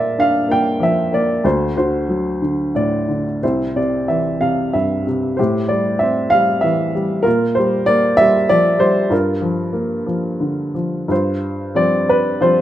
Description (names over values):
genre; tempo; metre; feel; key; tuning
classical, lyrical solo piano; 86-98 BPM; 3/4; rubato; G dorian; A4 = 438 Hz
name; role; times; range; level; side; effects
warm upright piano; solo; 0.0-12.6 s; C2 to G5; -15 LUFS; equal; none
room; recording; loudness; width
light reverb; close, detailed microphones; -15 LUFS; side -12 dB against mid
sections
0.0-11.1 A section; 11.1-12.6 B section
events
none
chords
0.0 Bb6; 1.4 D7; 3.4 C; 5.4 Am7; 7.3 Gm7/Bb; 9.1 Gm7; 11.1 G7sus4